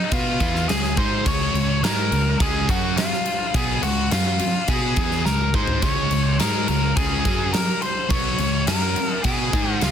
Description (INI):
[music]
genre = quiet-loud alternative rock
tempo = 105 BPM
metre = 4/4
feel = straight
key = Db major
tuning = A4 = 440 Hz
[part]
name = biting lead guitar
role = melody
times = 0.0-9.9 s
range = F4 to Db6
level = -25 LUFS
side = left 1 dB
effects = overdrive, slapback echo
[part]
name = thick fuzz guitar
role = riff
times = 0.1-9.9 s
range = Cb3 to Cb5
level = -24 LUFS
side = equal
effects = distortion
[part]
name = growling fingered electric bass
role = bass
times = 0.1-9.9 s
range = Cb2 to Cb3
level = -25 LUFS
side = equal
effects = overdrive
[part]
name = huge arena drum kit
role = drums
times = 0.1-9.9 s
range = crash cymbal, kick drum, snare drum, toms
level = -23 LUFS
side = equal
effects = none
[sound]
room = small room ambience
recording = dense, heavily limited modern master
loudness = -18 LUFS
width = side -8 dB against mid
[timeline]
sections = 0.0-9.9 A section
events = drum fill 5.3-5.8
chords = 0.0 Db